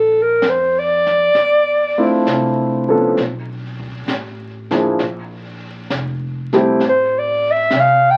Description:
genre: jazz ballad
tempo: 66 BPM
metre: 4/4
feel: swing 69% on 8ths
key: unclear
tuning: A4 = 438 Hz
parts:
  - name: warm clarinet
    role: melody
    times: 0.0-8.2 s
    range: A4 to G5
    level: -15 LUFS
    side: equal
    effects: none
  - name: warm grand piano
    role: accompaniment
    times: 0.0-6.8 s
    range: F3 to A4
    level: -17 LUFS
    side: equal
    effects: none
  - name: upright bass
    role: bass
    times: 0.0-8.2 s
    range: F1 to F2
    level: -30 LUFS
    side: equal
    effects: none
  - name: jazz brush drum kit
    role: drums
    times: 0.4-8.2 s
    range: brushed snare drum, hi-hat, kick drum, snare drum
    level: -29 LUFS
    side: equal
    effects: none
room: wet club reverb, RT60 0.5 s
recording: very old 78 rpm record, vinyl crackle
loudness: -16 LUFS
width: mono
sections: 0.0-8.2 A section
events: clarinet solo 0.0-8.2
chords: 0.0 Bbmaj9#11; 3.2 Bm7b5; 5.0 Bb5; 6.8 Am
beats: 0.42 1.34 2.26 | 3.17 4.08 4.99 5.90 | 6.81 7.71

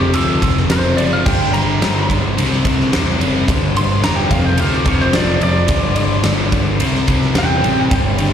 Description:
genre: hard rock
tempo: 108 BPM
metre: 4/4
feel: straight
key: unclear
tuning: A4 = 444 Hz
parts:
  - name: lightly driven lead guitar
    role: melody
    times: 0.0-8.3 s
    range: G4 to C6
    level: -21 LUFS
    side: right 1 dB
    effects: plate reverb, slapback echo, digital delay
  - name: crunchy overdriven guitar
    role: riff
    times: 0.0-8.3 s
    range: F2 to C4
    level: -20 LUFS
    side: left 9 dB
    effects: slapback echo
  - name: sludgy distorted guitar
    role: riff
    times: 0.0-8.3 s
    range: F2 to C4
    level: -21 LUFS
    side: right 8 dB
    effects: overdrive
  - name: picked electric bass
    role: bass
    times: 0.0-8.3 s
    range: E1 to E2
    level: -20 LUFS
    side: equal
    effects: none
  - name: huge arena drum kit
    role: drums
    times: 0.1-8.3 s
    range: crash cymbal, kick drum, ride cymbal, snare drum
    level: -18 LUFS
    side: equal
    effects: none
room: light reverb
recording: live gig heard through the venue's PA, recital hall reverb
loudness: -13 LUFS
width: side -8 dB against mid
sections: 0.0-8.3 A section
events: lead electric guitar solo 0.0-8.3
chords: 0.0 F5; 1.3 Gm; 2.4 C; 3.5 G5; 4.3 F5; 5.7 G5; 6.8 C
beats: 0.14 0.69 | 1.25 1.81 2.37 2.92 | 3.48 4.03 4.59 5.14 | 5.70 6.25 6.81 7.36 | 7.92

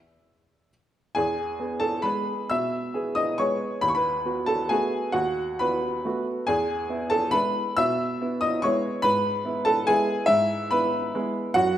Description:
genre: classical, piano waltz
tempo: 119-155 BPM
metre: 3/4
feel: rubato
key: E major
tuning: A4 = 440 Hz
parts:
  - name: clear upright piano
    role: solo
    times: 0.0-11.8 s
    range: D#2 to E6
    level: -22 LUFS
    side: equal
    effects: none
room: wet recital hall reverb, RT60 1.7 s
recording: none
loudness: -22 LUFS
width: side -11 dB against mid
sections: 0.0-1.2 A section; 1.2-11.8 B section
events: none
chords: 0.0 E5; 1.2 E; 3.8 B7/D#; 6.5 E; 9.0 E/G#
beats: 0.18 0.68 | 1.16 1.60 2.04 | 2.51 2.94 3.39 | 3.83 4.26 4.71 | 5.14 5.60 6.05 | 6.47 6.89 7.32 | 7.79 8.21 8.63 | 9.04 9.45 9.88 | 10.28 10.72 11.15 | 11.56

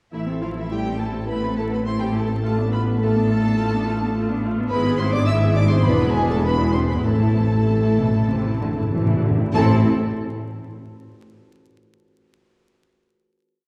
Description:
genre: quick classical-period movement for symphony orchestra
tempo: 95-107 BPM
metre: 4/4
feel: rubato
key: A minor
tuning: A4 = 440 Hz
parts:
  - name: rich chamber violin section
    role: melody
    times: 0.1-9.9 s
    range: E5 to E6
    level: -33 LUFS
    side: equal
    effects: none
  - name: warm chamber violin section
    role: second line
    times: 0.1-9.9 s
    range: E4 to E5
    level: -31 LUFS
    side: equal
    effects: none
  - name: rich chamber viola section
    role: accompaniment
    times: 0.1-9.9 s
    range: E3 to A4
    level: -29 LUFS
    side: equal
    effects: none
  - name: mellow French horn section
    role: sustained chords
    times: 0.1-9.8 s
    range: E3 to E4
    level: -28 LUFS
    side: equal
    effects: none
  - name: rich chamber cello section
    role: bass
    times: 0.1-9.9 s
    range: E2 to E3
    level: -27 LUFS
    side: equal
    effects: none
  - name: warm chamber double bass section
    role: bass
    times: 0.1-9.9 s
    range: E1 to A1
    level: -25 LUFS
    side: equal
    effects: none
  - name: timpani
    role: percussion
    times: 7.0-9.8 s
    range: A2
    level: -29 LUFS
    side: equal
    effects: none
room: wet concert hall reverb, RT60 2.1 s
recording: heard from further back in the room, vinyl crackle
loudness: -20 LUFS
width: mono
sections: 0.1-9.5 A section; 9.5-11.9 final chord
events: timpani fill 7.0-9.5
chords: 0.1 Am; 2.4 Bm7b5/A; 4.7 E/G#; 5.8 E7; 7.0 Am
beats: | 0.14 0.71 1.29 1.86 | 2.44 3.01 3.58 4.14 | 4.70 5.28 5.85 6.43 | 7.04 7.66 8.29 8.91 | 9.53

